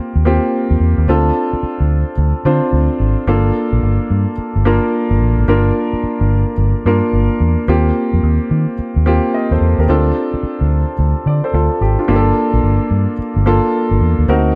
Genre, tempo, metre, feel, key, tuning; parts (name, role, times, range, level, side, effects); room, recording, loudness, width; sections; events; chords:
R&B, new jack swing; 109 BPM; 4/4; swing 64% on 16ths; G minor; A4 = 441 Hz
warm concert grand piano; accompaniment; 0.0-14.6 s; Bb3 to Eb5; -19 LUFS; equal
vintage muted fingered electric bass; bass; 0.2-14.5 s; G1 to Eb3; -16 LUFS; equal
light reverb, small room ambience; dark, warm production; -15 LUFS; mono
0.0-14.6 A section
0.0 Eb6; 1.1 Dm7; 3.3 Gm9; 7.7 Eb6; 9.9 Dm7; 12.1 Gm9